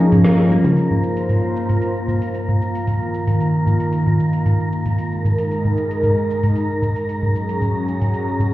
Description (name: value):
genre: organic downtempo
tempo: 114 BPM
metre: 4/4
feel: straight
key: Bb minor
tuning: A4 = 439 Hz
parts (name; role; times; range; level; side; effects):
- airy breathy pad; sustained chords; 0.0-8.5 s; Eb3 to C5; -21 LUFS; equal; chorus, phaser
- concert harp; arpeggios; 0.0-3.7 s; F3 to Bb4; -18 LUFS; equal; tape echo
- wind-like tuned noise texture; texture; 0.0-8.5 s; Bb5; -30 LUFS; right 1 dB; built-in reverb
- afro-pop drum kit; drums; 0.1-8.5 s; hi-hat, shaker, snare drum, toms; -20 LUFS; equal; none
- bongos; percussion; 0.1-0.7 s; none; -28 LUFS; equal; none
room: moderate echo chamber reverb, RT60 1.5 s, digital ambience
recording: heard muffled through a wall, stone room reverb, EQ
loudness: -16 LUFS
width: side -16 dB against mid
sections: 0.8-8.5 A section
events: band accent 0.2; drum fill 0.5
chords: 0.0 Gbmaj7 (rootless); 0.8 Bb5; 2.9 Ebsus2; 5.0 Ab5; 7.1 Gb